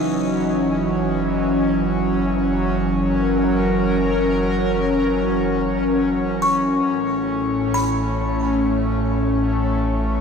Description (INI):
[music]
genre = ambient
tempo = free time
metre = none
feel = none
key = unclear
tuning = A4 = 440 Hz
[part]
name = airy breathy pad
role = sustained chords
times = 0.0-10.2 s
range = A2 to D#5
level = -18 LUFS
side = equal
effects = chorus, shimmer reverb
[part]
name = buzzing kalimba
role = arpeggios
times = 0.0-9.8 s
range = D#4 to C#6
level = -26 LUFS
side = left 1 dB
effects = diffuse ambient delay, shimmer reverb
[part]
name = warm sub bass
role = bass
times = 0.0-10.2 s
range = F#1 to A1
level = -28 LUFS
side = equal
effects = none
[sound]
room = moderate concert hall reverb, RT60 2.2 s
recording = none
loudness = -18 LUFS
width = side -6 dB against mid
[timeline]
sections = 0.0-10.2 A section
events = none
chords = 0.0 F#7; 6.9 Aadd9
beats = free time